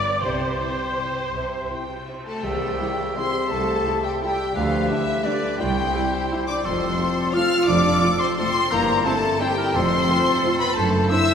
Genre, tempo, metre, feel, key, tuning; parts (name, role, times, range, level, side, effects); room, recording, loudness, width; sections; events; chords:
classical, orchestral ballroom waltz; 155-190 BPM; 3/4; rubato; C major; A4 = 440 Hz
clear oboe; second line; 0.0-11.3 s; A4 to E5; -31 LUFS; right 1 dB
mellow hollow silver concert flute; second line; 0.0-11.3 s; D5 to F6; -28 LUFS; left 1 dB
rich studio violin section; second line; 0.0-11.3 s; D4 to F5; -31 LUFS; left 3 dB
warm studio viola section; accompaniment; 0.0-11.2 s; G3 to D5; -30 LUFS; right 1 dB
rich studio cello section; bass; 0.0-11.0 s; C2 to C3; -29 LUFS; right 2 dB
rich studio double bass section; bass; 0.0-11.0 s; F1 to D2; -29 LUFS; right 2 dB
cymbal swell and tam-tam; percussion; 0.2-3.8 s; -35 LUFS; equal
timpani; percussion; 0.2-0.7 s; C3; -35 LUFS; left 1 dB
warm studio violin section; melody; 0.6-11.3 s; D5 to F6; -26 LUFS; left 4 dB
dark French horn section; sustained chords; 0.6-11.3 s; D3 to F4; -26 LUFS; left 2 dB
dark clarinet; second line; 2.4-11.3 s; D4 to G4; -30 LUFS; right 1 dB
wet church reverb, RT60 3.1 s; recorded in a church or concert hall; -19 LUFS; side -7 dB against mid
0.0-2.4 A section; 2.4-11.3 B section
band accent 2.4-2.8
0.2 C; 4.6 G7/D; 5.6 C; 6.6 F; 8.7 C7/G; 9.8 F; 10.8 D7/F#